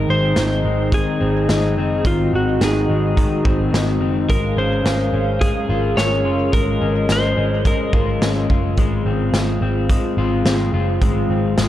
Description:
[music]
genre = dream pop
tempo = 107 BPM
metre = 4/4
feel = straight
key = Ab mixolydian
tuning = A4 = 438 Hz
[part]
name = clean lap steel guitar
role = melody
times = 0.0-8.2 s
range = F4 to Db5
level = -23 LUFS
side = equal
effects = tape echo
[part]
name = hollow soft pad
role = sustained chords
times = 0.0-11.7 s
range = C4 to F5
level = -24 LUFS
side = equal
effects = chorus
[part]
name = electric guitar at the edge of break-up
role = arpeggios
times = 0.0-11.7 s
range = Eb3 to F4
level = -22 LUFS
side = left 4 dB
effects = lush chorus, tape echo
[part]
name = vintage muted picked electric bass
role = bass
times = 0.0-11.7 s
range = Gb1 to Ab1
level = -21 LUFS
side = equal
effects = none
[part]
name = raw garage drum kit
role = drums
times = 0.4-11.7 s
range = hi-hat, kick drum, snare drum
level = -22 LUFS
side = equal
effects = none
[sound]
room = light reverb, studio reverb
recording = dark, warm production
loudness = -16 LUFS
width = side -13 dB against mid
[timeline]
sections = 0.0-11.7 A section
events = none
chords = 0.0 Ab7; 4.3 Bbm7; 8.8 Fm

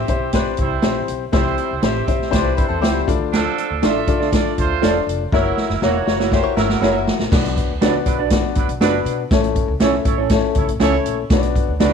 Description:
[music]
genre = uptempo 1960s-style soul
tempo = 120 BPM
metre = 4/4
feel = straight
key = B minor from 7.3 s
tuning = A4 = 441 Hz
[part]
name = mellow horn section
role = second line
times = 0.0-11.9 s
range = F3 to E5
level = -25 LUFS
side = right 13 dB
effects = none
[part]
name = warm upright piano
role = accompaniment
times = 0.0-11.9 s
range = A3 to D5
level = -21 LUFS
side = left 13 dB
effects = none
[part]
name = upright bass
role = bass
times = 0.0-11.9 s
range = E1 to D3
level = -25 LUFS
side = equal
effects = none
[part]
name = swinging big-band drum kit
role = drums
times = 0.1-11.9 s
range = crash cymbal, hi-hat, kick drum, snare drum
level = -19 LUFS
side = right 1 dB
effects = none
[part]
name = direct-recorded clean electric guitar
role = riff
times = 2.3-3.2, 6.4-7.3 s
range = G3 to C#5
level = -26 LUFS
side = left 14 dB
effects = spring reverb
[part]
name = mellow electric guitar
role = stabs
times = 3.8-11.9 s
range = A#3 to D5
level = -24 LUFS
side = right 12 dB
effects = none
[sound]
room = light reverb, small room ambience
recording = 1960s-style stereo with parts hard left and right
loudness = -16 LUFS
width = side -6 dB against mid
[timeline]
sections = 0.0-7.3 A section; 7.3-11.9 B section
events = drum fill 5.3-7.3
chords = 0.0 C; 3.1 Dm; 5.3 F#7; 7.3 Bm; 9.3 A; 11.3 Bm

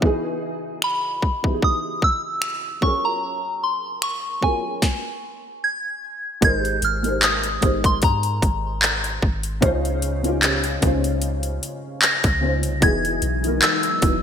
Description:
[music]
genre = contemporary R&B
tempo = 75 BPM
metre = 4/4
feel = swing 54% on 16ths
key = unclear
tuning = A4 = 440 Hz
[part]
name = felt-muted upright piano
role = accompaniment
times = 0.0-14.2 s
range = Db3 to C5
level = -25 LUFS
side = equal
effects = ensemble chorus
[part]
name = trap drum kit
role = drums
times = 0.0-14.2 s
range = finger snaps, handclaps, hi-hat, kick drum, snare drum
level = -20 LUFS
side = equal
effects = overdrive, gated reverb
[part]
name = soft synth bell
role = melody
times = 0.8-14.2 s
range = Ab5 to Bb6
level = -23 LUFS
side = equal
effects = chorus, ping-pong delay
[part]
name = soft 808-style bass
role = bass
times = 6.4-14.2 s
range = E1 to Ab2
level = -26 LUFS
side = equal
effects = none
[part]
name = ethereal airy pad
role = sustained chords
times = 13.3-14.2 s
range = E3 to D#4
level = -28 LUFS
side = left 4 dB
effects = ensemble chorus, built-in reverb, phaser
[sound]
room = moderate lush hall reverb, RT60 2.0 s, digital ambience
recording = bright 1980s-style digital production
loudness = -19 LUFS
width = side -8 dB against mid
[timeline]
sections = 0.0-6.4 A section; 6.4-14.2 B section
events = stop 4.8-6.4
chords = 0.0 Emaj9; 2.8 Gbmaj9; 6.4 Abmaj9; 9.6 Dbmaj9; 12.8 Emaj9

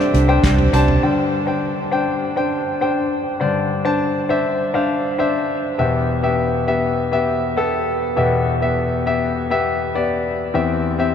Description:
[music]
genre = piano-driven pop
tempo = 101 BPM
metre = 4/4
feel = straight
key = unclear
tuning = A4 = 436 Hz
[part]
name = dark French horn section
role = second line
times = 0.0-0.7 s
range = D3 to D4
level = -30 LUFS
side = right 2 dB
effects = none
[part]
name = clear concert grand piano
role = accompaniment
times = 0.0-11.1 s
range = E2 to A5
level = -17 LUFS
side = left 2 dB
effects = none
[part]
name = fingerpicked steel-string acoustic guitar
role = riff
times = 0.0-1.0 s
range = G3 to G4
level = -28 LUFS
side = right 5 dB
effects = none
[part]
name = vintage muted fingered electric bass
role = bass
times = 0.1-1.0 s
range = C2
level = -16 LUFS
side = equal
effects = none
[part]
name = loose indie drum kit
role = drums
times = 0.1-1.0 s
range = handclaps, hi-hat, kick drum, snare drum, toms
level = -25 LUFS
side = right 1 dB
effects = none
[sound]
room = wet huge ambient reverb, RT60 8.7 s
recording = dreamy mix soaked in reverb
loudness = -16 LUFS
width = side -8 dB against mid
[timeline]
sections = 0.0-1.0 A section; 1.0-11.1 B section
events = none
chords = 0.0 Csus2; 1.0 Gsus4; 5.8 Em; 10.5 C/E

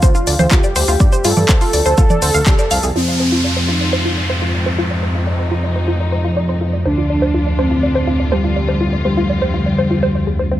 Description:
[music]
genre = melodic techno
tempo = 123 BPM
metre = 4/4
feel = straight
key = unclear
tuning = A4 = 440 Hz
[part]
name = fat analog lead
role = melody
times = 0.0-10.6 s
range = G3 to A4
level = -20 LUFS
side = equal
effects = chorus, vintage 12-bit sampler grit, sidechain pumping, digital delay
[part]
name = analog pluck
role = arpeggios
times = 0.0-10.6 s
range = C4 to F5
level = -21 LUFS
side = equal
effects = chorus, phaser, sidechain pumping, dub echo
[part]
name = fat analog bass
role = bass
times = 0.0-10.6 s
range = C2 to G2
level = -19 LUFS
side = equal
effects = tube saturation, sidechain pumping
[part]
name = analog drone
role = drone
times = 0.0-10.6 s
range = F2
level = -27 LUFS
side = equal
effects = none
[part]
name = electronic kick drum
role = drums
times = 0.0-2.6 s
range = none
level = -12 LUFS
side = equal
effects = overdrive
[part]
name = house drum kit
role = drums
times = 0.0-2.9 s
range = congas, handclaps, hi-hat, shaker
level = -18 LUFS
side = equal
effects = overdrive
[part]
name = dark symphonic string section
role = sustained chords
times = 3.0-10.6 s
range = Ab2 to F4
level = -24 LUFS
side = left 2 dB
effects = sidechain pumping, low-pass filter
[part]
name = downlifter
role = sound effects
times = 3.0-6.9 s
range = none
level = -23 LUFS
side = equal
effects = none
[sound]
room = light reverb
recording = none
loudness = -13 LUFS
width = side -13 dB against mid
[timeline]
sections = 0.0-3.0 A section; 3.0-10.6 B section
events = filter sweep on synth arpeggio sound 0.0-3.0; band accent 2.5; filter sweep on analog synth lead 3.0-10.6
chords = 0.0 Dm; 3.0 Fm; 6.9 Dm

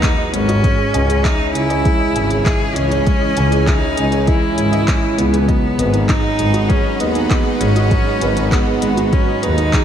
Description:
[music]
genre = piano and strings electronica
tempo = 99 BPM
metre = 4/4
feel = straight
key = G# minor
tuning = A4 = 440 Hz
[part]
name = rich cello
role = melody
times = 0.0-9.8 s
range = B3 to G#4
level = -20 LUFS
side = right 1 dB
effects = ping-pong delay
[part]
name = lush unison pad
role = sustained chords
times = 0.0-9.8 s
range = C#3 to B4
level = -23 LUFS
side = equal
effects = chorus
[part]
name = soft round pluck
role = arpeggios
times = 0.0-9.8 s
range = G#4 to D#5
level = -28 LUFS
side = right 3 dB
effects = chorus, sidechain pumping, ping-pong delay
[part]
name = felt-muted upright piano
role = riff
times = 0.0-9.8 s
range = F#3 to G#5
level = -22 LUFS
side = right 1 dB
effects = ping-pong delay
[part]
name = electronic kick drum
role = drums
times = 0.0-9.8 s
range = none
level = -16 LUFS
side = equal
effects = overdrive
[part]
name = organic electronic drum kit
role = drums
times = 0.0-9.8 s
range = handclaps, hi-hat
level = -26 LUFS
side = equal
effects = none
[part]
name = clear symphonic double bass section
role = bass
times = 0.3-9.7 s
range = G#1 to D#2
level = -19 LUFS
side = equal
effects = sidechain pumping
[sound]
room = moderate lush hall reverb, RT60 1.9 s, small room ambience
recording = dreamy mix soaked in reverb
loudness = -13 LUFS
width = side -9 dB against mid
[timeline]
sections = 0.0-9.8 A section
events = none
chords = 0.0 G#m7; 0.6 C#m; 5.5 G#m7

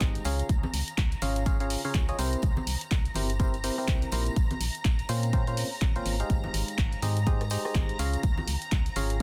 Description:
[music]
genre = piano house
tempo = 124 BPM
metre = 4/4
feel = swing 59% on 16ths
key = unclear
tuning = A4 = 438 Hz
[part]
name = analog string pad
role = sustained chords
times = 0.0-9.2 s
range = Bb5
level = -43 LUFS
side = equal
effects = ensemble chorus, sidechain pumping
[part]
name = barking FM electric piano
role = riff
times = 0.0-9.2 s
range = Bb2 to F5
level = -36 LUFS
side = equal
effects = chorus, sidechain pumping, delay
[part]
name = organ-like FM bass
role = bass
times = 0.0-9.2 s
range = G1 to Bb2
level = -33 LUFS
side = equal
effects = sidechain pumping
[part]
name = electronic kick drum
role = drums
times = 0.0-8.8 s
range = none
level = -29 LUFS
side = equal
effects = none
[part]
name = punchy analog drum machine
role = drums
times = 0.0-9.2 s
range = handclaps, hi-hat, rim click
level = -38 LUFS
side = equal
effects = none
[part]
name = congas and tambourine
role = percussion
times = 0.0-9.2 s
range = none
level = -44 LUFS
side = equal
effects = none
[part]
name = ethereal airy pad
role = texture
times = 0.8-9.2 s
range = Ab4 to G5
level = -58 LUFS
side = equal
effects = none
[sound]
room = little or no reverb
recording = dense, heavily limited modern master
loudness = -28 LUFS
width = mono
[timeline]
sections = 0.0-9.2 A section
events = none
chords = 0.3 Db; 2.2 C7; 4.4 Bbmadd9; 6.3 Abmaj7; 8.0 Db

